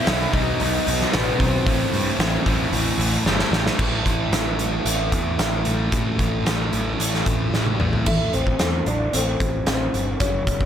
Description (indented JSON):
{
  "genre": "quiet-loud alternative rock",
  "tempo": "112 BPM",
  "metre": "4/4",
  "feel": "straight",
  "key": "A dorian",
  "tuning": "A4 = 445 Hz",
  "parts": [
    { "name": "electric guitar through a small old amp", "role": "melody", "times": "0.0-3.2, 8.1-10.7 s", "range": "B3 to E5", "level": "-26 LUFS", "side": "left 2 dB", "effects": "slapback echo" },
    { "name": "distorted electric guitar", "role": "riff", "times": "0.0-3.8 s", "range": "A2 to B3", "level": "-27 LUFS", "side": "right 1 dB", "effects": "distortion" },
    { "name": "thick fuzz guitar", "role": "riff", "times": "0.0-8.1 s", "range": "A2 to E4", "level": "-25 LUFS", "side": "equal", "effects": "distortion" },
    { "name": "fuzz picked electric bass", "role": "bass", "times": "0.1-10.7 s", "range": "F#1 to G2", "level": "-25 LUFS", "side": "equal", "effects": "overdrive" },
    { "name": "oversized low-tuned drum kit", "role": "drums", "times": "0.1-10.7 s", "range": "crash cymbal, hi-hat, kick drum, snare drum, toms", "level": "-23 LUFS", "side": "equal", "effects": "none" },
    { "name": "fingerpicked steel-string acoustic guitar", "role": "arpeggios", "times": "3.8-10.7 s", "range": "F#2 to E4", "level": "-30 LUFS", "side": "right 2 dB", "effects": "slapback echo" }
  ],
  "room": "light reverb",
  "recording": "none",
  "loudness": "-19 LUFS",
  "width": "side -9 dB against mid",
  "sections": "0.0-3.8 A section; 3.8-8.1 B section; 8.1-10.7 C section",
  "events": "drum fill 3.3-3.8, 7.5-8.1",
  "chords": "0.0 B; 1.7 Am",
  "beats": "0.07 0.60 1.13 | 1.66 2.19 2.73 3.26 | 3.79 4.32 4.86 5.39 | 5.92 6.46 6.99 7.53 | 8.06 8.60 9.13 9.67 | 10.20"
}